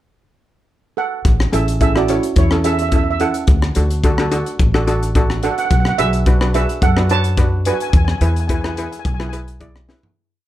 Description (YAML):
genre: calypso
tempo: 108 BPM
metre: 4/4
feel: swing 53% on 16ths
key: A major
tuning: A4 = 440 Hz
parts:
  - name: steel pan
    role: melody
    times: 1.0-9.4 s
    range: E4 to A5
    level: -21 LUFS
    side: right 5 dB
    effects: none
  - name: upright bass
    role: bass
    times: 1.2-9.9 s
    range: A1 to F#2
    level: -18 LUFS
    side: equal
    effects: none
  - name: crisp fusion drum kit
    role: drums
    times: 1.2-10.2 s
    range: hi-hat, kick drum, rim click, snare drum, toms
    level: -18 LUFS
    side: left 1 dB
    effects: none
  - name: steel pan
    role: accompaniment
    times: 1.5-10.2 s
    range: C#4 to D5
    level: -21 LUFS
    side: equal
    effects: none
room: light reverb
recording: dark, warm production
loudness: -14 LUFS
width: side -14 dB against mid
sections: 0.0-1.2 pickup bar; 1.2-10.2 chorus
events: fade-out 7.9-10.2; drum fill 9.9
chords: 0.0 N.C.; 1.2 Amaj7; 3.5 D; 5.7 Bm7; 7.9 E